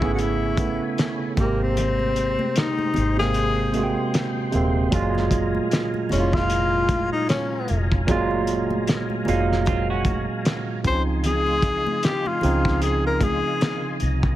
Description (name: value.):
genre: R&B, neo-soul.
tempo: 76 BPM.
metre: 4/4.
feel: swing 57% on 16ths.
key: unclear.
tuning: A4 = 439 Hz.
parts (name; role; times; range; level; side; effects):
breathy tenor saxophone; melody; 0.0-14.0 s; Bb3 to C5; -25 LUFS; left 3 dB; tape echo.
barky tine electric piano; accompaniment; 0.0-14.4 s; Bb2 to G5; -24 LUFS; right 3 dB; overdrive.
tonewheel organ; sustained chords; 0.0-14.4 s; Gb3 to C6; -34 LUFS; left 1 dB; overdrive, chorus vibrato, slow rotary speaker.
vintage muted fingered electric bass; bass; 0.0-14.3 s; Eb1 to Db2; -25 LUFS; equal; none.
cloth-damped thuddy drum kit; drums; 0.0-14.4 s; hi-hat, kick drum, snare drum; -25 LUFS; equal; none.
congas; percussion; 0.2-13.8 s; none; -34 LUFS; left 2 dB; none.
semi-hollow electric guitar; second line; 9.3-10.8 s; Bb3 to Gb4; -30 LUFS; right 5 dB; analog chorus.
room: light reverb, studio reverb.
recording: none.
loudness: -20 LUFS.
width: side -14 dB against mid.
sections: 0.0-4.9 A section; 4.9-14.4 B section.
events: kick muted 1.8-4.9.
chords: 0.0 Amaj9; 1.4 Abmaj9; 4.9 Gbmaj9; 10.8 Dbmaj9.